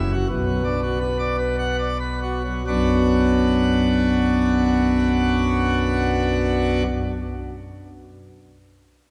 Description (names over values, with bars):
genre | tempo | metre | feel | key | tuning
classical, organ toccata | 64-93 BPM | 3/4 | straight | B minor | A4 = 443 Hz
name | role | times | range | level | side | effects
pipe organ, plenum | solo | 0.0-6.8 s | F#1 to F#5 | -21 LUFS | equal | none
room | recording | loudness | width
wet church reverb, RT60 2.8 s | recorded in a church or concert hall | -21 LUFS | mono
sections
0.0-2.7 A section; 2.7-8.3 B section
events
slowing down 0.0-2.7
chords
0.3 Bm